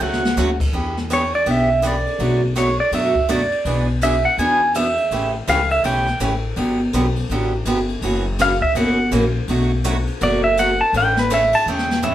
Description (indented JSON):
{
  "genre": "country, western swing",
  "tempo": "165 BPM",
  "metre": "4/4",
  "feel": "swing 64% on 8ths",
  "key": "unclear",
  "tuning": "A4 = 440 Hz",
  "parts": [
    { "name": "pedal steel guitar", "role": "melody", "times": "0.0-6.2, 8.4-12.1 s", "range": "B4 to A5", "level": "-18 LUFS", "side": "right 1 dB", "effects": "none" },
    { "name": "picked acoustic archtop guitar", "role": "accompaniment", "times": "0.0-12.1 s", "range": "B2 to A4", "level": "-22 LUFS", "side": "right 2 dB", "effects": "none" },
    { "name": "upright bass", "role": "bass", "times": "0.0-12.1 s", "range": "F#1 to F#2", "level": "-22 LUFS", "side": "left 1 dB", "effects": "none" },
    { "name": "jazz brush drum kit", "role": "drums", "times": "0.1-12.1 s", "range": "crash cymbal, hi-hat, kick drum, ride cymbal, snare drum, toms", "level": "-26 LUFS", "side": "left 2 dB", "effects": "none" }
  ],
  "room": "wet small room ambience, RT60 0.5 s",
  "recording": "band playing live in one room",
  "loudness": "-16 LUFS",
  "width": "side -12 dB against mid",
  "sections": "0.7-12.1 A section",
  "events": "drum fill 0.0-0.4, 11.7-12.1; pedal steel guitar solo 0.7-12.1",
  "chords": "0.0 Dmaj7; 0.7 Em7; 2.2 Bm7; 3.7 E7/B; 5.1 A7; 6.6 Gmaj7; 8.0 F#7; 9.5 Bm7; 10.9 A",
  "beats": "0.01 0.38 | 0.74 1.10 1.47 1.83 | 2.20 2.56 2.93 3.29 | 3.66 4.02 4.38 4.75 | 5.11 5.48 5.84 6.21 | 6.57 6.93 7.30 7.66 | 8.03 8.39 8.75 9.12 | 9.48 9.85 10.21 10.57 | 10.94 11.30 11.67 12.03"
}